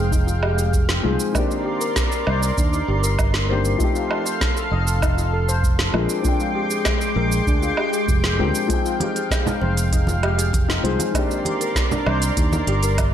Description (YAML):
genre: sunset chillout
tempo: 98 BPM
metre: 4/4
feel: straight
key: F dorian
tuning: A4 = 440 Hz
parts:
  - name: dark grand piano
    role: accompaniment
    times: 0.0-13.1 s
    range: Eb3 to G5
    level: -27 LUFS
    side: moving between left 6 dB and right 7 dB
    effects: auto-pan, digital delay
  - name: lush unison pad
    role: sustained chords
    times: 0.0-13.1 s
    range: Ab3 to D6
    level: -25 LUFS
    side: equal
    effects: chorus
  - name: fretless electric bass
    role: bass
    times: 0.0-13.1 s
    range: F1 to Eb2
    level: -21 LUFS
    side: right 1 dB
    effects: ensemble chorus
  - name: steel pan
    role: arpeggios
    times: 0.1-13.0 s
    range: D4 to Eb5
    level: -28 LUFS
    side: left 3 dB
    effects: low-pass filter, digital delay
  - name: electronic kick drum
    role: drums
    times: 0.1-13.1 s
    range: none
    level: -22 LUFS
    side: right 1 dB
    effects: none
  - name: smooth R&B drum kit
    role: drums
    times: 0.1-13.1 s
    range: cabasa, hi-hat, snare drum, woodblock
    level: -26 LUFS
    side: right 2 dB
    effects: none
  - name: congas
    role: percussion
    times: 9.0-13.1 s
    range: none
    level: -29 LUFS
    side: right 3 dB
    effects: none
room: light reverb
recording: none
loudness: -18 LUFS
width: side -10 dB against mid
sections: 0.0-13.1 A section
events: filter sweep on steel pan 0.0-13.1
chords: 0.0 Fm9; 1.4 Cm9; 3.8 F7; 5.9 Bb13; 8.7 Fm9; 11.1 Cm9